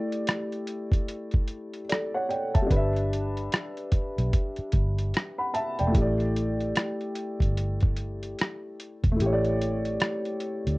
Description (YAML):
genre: lo-fi hip hop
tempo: 74 BPM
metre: 4/4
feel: swing 62% on 16ths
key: unclear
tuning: A4 = 440 Hz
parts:
  - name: dark upright piano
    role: accompaniment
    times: 0.0-10.8 s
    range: G3 to B5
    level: -29 LUFS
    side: equal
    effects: none
  - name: lo-fi sampler-style drum kit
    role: drums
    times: 0.1-10.8 s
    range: hi-hat, kick drum, rim click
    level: -25 LUFS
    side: equal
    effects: overdrive, vintage 12-bit sampler grit
  - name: vintage muted fingered electric bass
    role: bass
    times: 2.7-10.8 s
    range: E1 to D2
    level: -27 LUFS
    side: equal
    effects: none
room: light reverb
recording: worn, warbling old tape, cassette tape, warbly pitch drift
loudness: -25 LUFS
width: side -22 dB against mid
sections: 0.0-10.8 A section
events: break 0.0-2.7; kick muted 9.2-10.8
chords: 0.0 A7sus4; 2.7 G6; 5.9 A7sus4